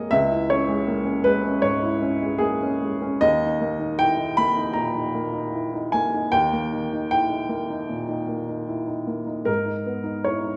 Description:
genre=neoclassical minimalist piano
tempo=77 BPM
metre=4/4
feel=rubato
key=unclear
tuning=A4 = 441 Hz
part: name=warm upright piano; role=solo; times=0.0-10.6 s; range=C#2 to B5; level=-24 LUFS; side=equal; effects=none
room=moderate recital hall reverb, RT60 1.5 s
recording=recorded in a church or concert hall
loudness=-24 LUFS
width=mono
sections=0.0-10.6 A section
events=none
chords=0.1 C#m; 3.2 D#; 9.5 G#madd9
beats=| 0.12 0.87 1.64 2.42 | 3.24 4.00 4.76 5.54 | 6.33 7.11 7.89 8.69 | 9.48 10.27

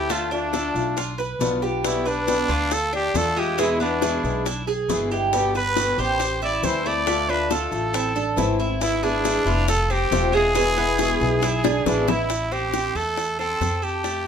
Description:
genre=latin, Cuban son and guajira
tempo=138 BPM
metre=4/4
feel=straight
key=A minor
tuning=A4 = 440 Hz
part: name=growling trumpet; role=melody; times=0.0-14.3 s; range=D4 to D5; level=-24 LUFS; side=right 1 dB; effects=none
part: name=picked swing-style acoustic guitar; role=accompaniment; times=0.0-12.3 s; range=B2 to G4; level=-26 LUFS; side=left 6 dB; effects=none
part: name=Cuban tres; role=arpeggios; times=0.0-14.3 s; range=G#3 to B4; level=-26 LUFS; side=right 3 dB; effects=none
part: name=upright bass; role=bass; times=0.0-14.3 s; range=E1 to F2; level=-28 LUFS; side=equal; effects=none
part: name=bongos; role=percussion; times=0.1-14.3 s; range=none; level=-28 LUFS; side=left 7 dB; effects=none
part: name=maracas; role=percussion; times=0.1-14.3 s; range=none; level=-35 LUFS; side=right 3 dB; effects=none
part: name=nylon-string guitar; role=second line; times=7.9-12.3 s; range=B3 to E4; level=-29 LUFS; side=right 5 dB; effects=none
room=moderate studio ambience, RT60 0.5 s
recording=minimal, uncompressed stereo recording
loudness=-20 LUFS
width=side -7 dB against mid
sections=0.0-12.3 A section; 12.3-14.3 B section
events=drum fill 11.6-12.3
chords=0.1 Dm; 1.0 Bdim; 2.7 Dm; 3.6 E; 5.3 G; 6.2 Am7; 7.1 Dm; 7.9 Am; 8.8 E/G#; 9.7 F; 10.6 E; 12.3 Am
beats=| 0.10 0.54 0.97 1.41 | 1.84 2.28 2.71 3.15 | 3.59 4.02 4.46 4.89 | 5.33 5.76 6.20 6.63 | 7.07 7.50 7.94 8.38 | 8.81 9.25 9.68 10.12 | 10.55 10.99 11.42 11.86 | 12.29 12.73 13.17 13.60 | 14.04

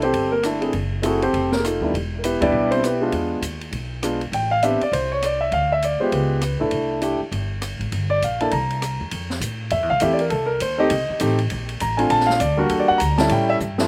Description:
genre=jazz piano trio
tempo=200 BPM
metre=4/4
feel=swing 61% on 8ths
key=C major, F major from 9.1 s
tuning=A4 = 441 Hz
part: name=warm concert grand piano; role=melody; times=0.0-13.9 s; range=F3 to Bb5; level=-22 LUFS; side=equal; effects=slapback echo
part: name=upright bass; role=bass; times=0.0-13.9 s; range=E1 to A2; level=-28 LUFS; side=equal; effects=none
part: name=open jazz drum kit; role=drums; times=0.0-13.8 s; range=hi-hat, kick drum, ride cymbal, rim click, snare drum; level=-33 LUFS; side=equal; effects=none
room=little or no reverb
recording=recorded outdoors, with no room sound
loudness=-21 LUFS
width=mono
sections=0.0-9.1 A section; 9.1-13.9 B section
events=band accent 2.4; drum fill 13.6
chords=0.0 C69; 0.7 F#m7b5; 1.3 F9; 1.9 Em7; 3.1 E7b9; 4.3 Am11; 5.5 Dm; 6.1 Db7#11; 6.7 C69; 7.9 Gm; 8.5 C7; 9.1 Fmaj7; 10.3 Am7b5; 11.5 Bbmaj7; 12.7 Em7b5; 13.3 A7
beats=0.13 0.43 | 0.73 1.03 1.33 1.63 | 1.93 2.23 2.53 2.83 | 3.12 3.42 3.72 4.02 | 4.32 4.62 4.92 5.22 | 5.52 5.82 6.12 6.42 | 6.72 7.02 7.32 7.62 | 7.92 8.21 8.51 8.81 | 9.11 9.41 9.71 10.01 | 10.31 10.61 10.91 11.21 | 11.51 11.80 12.10 12.40 | 12.70 13.00 13.30 13.60

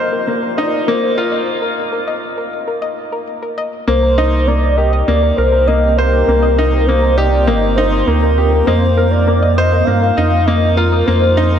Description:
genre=piano and strings electronica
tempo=100 BPM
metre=4/4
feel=straight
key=C minor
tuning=A4 = 440 Hz
part: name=warm velvety synth lead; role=melody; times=0.0-11.6 s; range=Bb4 to F5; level=-17 LUFS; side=equal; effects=chorus
part: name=granular cloud pad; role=sustained chords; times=0.0-11.6 s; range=Bb3 to C5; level=-24 LUFS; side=right 2 dB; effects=built-in reverb
part: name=clear concert grand piano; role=riff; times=0.0-11.6 s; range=Bb3 to C5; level=-17 LUFS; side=left 2 dB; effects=ping-pong delay
part: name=warm sub bass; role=bass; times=0.0-11.6 s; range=G1 to G2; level=-15 LUFS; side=right 1 dB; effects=high-pass filter
part: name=soft round pluck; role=arpeggios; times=0.1-11.6 s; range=Bb4 to Eb5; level=-25 LUFS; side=left 1 dB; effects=none
room=moderate huge ambient reverb, RT60 4.2 s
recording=dark, warm production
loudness=-12 LUFS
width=side -8 dB against mid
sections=0.0-3.9 A section; 3.9-11.6 B section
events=build-up 0.0-3.9; break 1.5-3.9; drop 3.9-11.6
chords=0.0 F7sus4; 3.9 Cm7; 8.7 F7sus4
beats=0.28 0.88 | 1.48 2.08 2.68 3.28 | 3.88 4.48 5.08 5.68 | 6.28 6.88 7.48 8.08 | 8.68 9.28 9.88 10.48 | 11.08

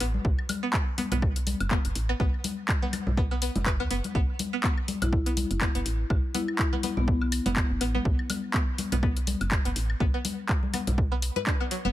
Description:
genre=minimal techno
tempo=123 BPM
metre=4/4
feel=swing 56% on 16ths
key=unclear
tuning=A4 = 439 Hz
part: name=string-like resonator pluck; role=riff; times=0.0-11.9 s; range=F#3 to B4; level=-34 LUFS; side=equal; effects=chorus, phaser, vintage 12-bit sampler grit, sidechain pumping, dub echo
part: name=woody FM bass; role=bass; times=0.0-11.9 s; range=F#1 to D2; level=-29 LUFS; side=equal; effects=sidechain pumping
part: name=punchy analog drum machine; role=drums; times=0.0-11.8 s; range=handclaps, hi-hat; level=-32 LUFS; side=left 1 dB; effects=overdrive
part: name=woodblock and congas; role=percussion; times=0.0-11.9 s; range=none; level=-34 LUFS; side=left 3 dB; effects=ping-pong delay
part: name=electronic kick drum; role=drums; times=0.2-11.6 s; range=none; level=-27 LUFS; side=equal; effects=overdrive
part: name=marimba with soft mallets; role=melody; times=5.0-7.5 s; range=B3 to E4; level=-34 LUFS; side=left 2 dB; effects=ping-pong delay
room=little or no reverb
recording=none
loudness=-25 LUFS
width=side -14 dB against mid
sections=0.0-11.9 A section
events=none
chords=0.0 B5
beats=| 0.25 0.74 1.22 1.71 | 2.20 2.69 3.17 3.66 | 4.15 4.64 5.13 5.61 | 6.10 6.59 7.08 7.57 | 8.05 8.54 9.03 9.52 | 10.00 10.49 10.98 11.47

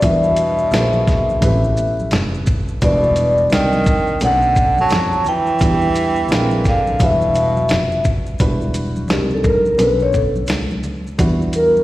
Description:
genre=hip hop, jazz-hop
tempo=86 BPM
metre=4/4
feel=swing 64% on 16ths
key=E dorian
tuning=A4 = 441 Hz
part: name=vibraphone with soft mallets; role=melody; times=0.0-11.8 s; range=G4 to A5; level=-17 LUFS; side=equal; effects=none
part: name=breathy tenor saxophone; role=second line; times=0.0-8.0 s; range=B2 to F#3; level=-23 LUFS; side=right 1 dB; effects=slapback echo
part: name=dark concert grand piano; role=accompaniment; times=0.0-11.8 s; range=F#3 to E#5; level=-24 LUFS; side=right 1 dB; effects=slapback echo
part: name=clear double bass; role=bass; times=0.0-11.8 s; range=E1 to F2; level=-20 LUFS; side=equal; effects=none
part: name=dusty soul sampler-style drum kit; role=drums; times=0.0-11.7 s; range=hi-hat, kick drum, shaker, snare drum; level=-19 LUFS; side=equal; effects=none
part: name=maracas and congas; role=percussion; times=0.0-11.8 s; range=none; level=-30 LUFS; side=left 1 dB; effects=none
room=light reverb, small room ambience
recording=live gig heard through the venue's PA, recital hall reverb, vinyl crackle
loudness=-14 LUFS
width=side -16 dB against mid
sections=0.0-8.4 A section; 8.4-11.8 B section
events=vibraphone solo 8.4-11.8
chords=0.0 Em9; 0.7 A#9; 1.4 A7; 2.8 Em9; 3.5 Cm7; 4.2 Bm7; 5.6 Em7; 6.3 A#9; 7.0 Em7; 8.4 Em9; 9.1 Cm7; 9.8 Bm7; 11.2 Em9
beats=| 0.03 0.72 1.42 2.12 | 2.81 3.51 4.21 4.91 | 5.61 6.30 7.00 7.70 | 8.40 9.09 9.79 10.49 | 11.19

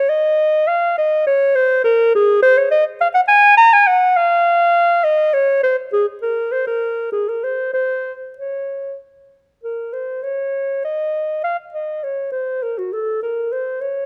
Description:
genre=classical, baroque-style fantasia for unaccompanied clarinet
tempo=101 BPM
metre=3/4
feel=rubato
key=Db major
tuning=A4 = 435 Hz
part: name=dark clarinet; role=solo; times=0.0-14.1 s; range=Gb4 to Bb5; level=-17 LUFS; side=equal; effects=none
room=moderate recital hall reverb, RT60 1.7 s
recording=close, detailed microphones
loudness=-17 LUFS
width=mono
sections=0.0-9.6 A section; 9.6-14.1 A section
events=none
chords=none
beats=0.09 | 0.67 1.26 1.85 | 2.43 3.01 3.59 | 4.17 4.75 5.34 | 5.92 6.51 7.12 | 7.74 8.37 9.00 | 9.63 10.23 10.84 | 11.44 12.03 12.62 | 13.22 13.81

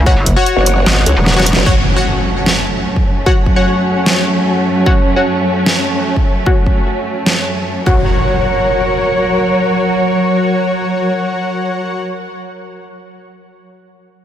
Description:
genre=heavy wobble dubstep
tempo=150 BPM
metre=4/4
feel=half-time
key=F# minor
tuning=A4 = 438 Hz
part: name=metallic wobble bass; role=bass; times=0.0-1.5 s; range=E1 to C#2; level=-13 LUFS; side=equal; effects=chorus, overdrive
part: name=supersaw stab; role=stabs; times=0.1-12.0 s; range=F#4 to F#5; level=-19 LUFS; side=left 2 dB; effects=low-pass filter, tape echo
part: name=electronic kick drum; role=drums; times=0.1-7.9 s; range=none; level=-13 LUFS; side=equal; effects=none
part: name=dubstep drum kit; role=drums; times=0.3-7.3 s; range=hi-hat, snare drum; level=-18 LUFS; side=right 1 dB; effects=overdrive
part: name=growl bass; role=bass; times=0.6-1.6 s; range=F#1 to C#2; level=-12 LUFS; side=equal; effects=chorus, overdrive
part: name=dark studio string section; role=sustained chords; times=1.7-12.0 s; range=F#2 to C#5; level=-16 LUFS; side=equal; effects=sidechain pumping
part: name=impact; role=sound effects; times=1.7-3.3, 7.9-12.7 s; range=none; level=-21 LUFS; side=equal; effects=none
room=wet huge ambient reverb, RT60 4.6 s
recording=dreamy mix soaked in reverb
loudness=-11 LUFS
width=side -10 dB against mid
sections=0.0-1.7 A section; 1.7-8.1 B section; 8.1-11.3 C section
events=drop 0.0-1.7; drum fill 1.3-1.7; band accent 1.5; impact 1.7-3.3; filter sweep on supersaw synth 1.7-8.1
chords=0.0 F#5; 1.7 F#m; 7.9 F#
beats=| 0.06 0.46 0.86 1.26 | 1.66 2.06 2.46 2.86 | 3.26 3.66 4.06 4.46 | 4.86 5.26 5.66 6.06 | 6.46 6.86 7.26 7.66 | 8.06 8.46 8.86 9.26 | 9.66 10.06 10.46 10.86

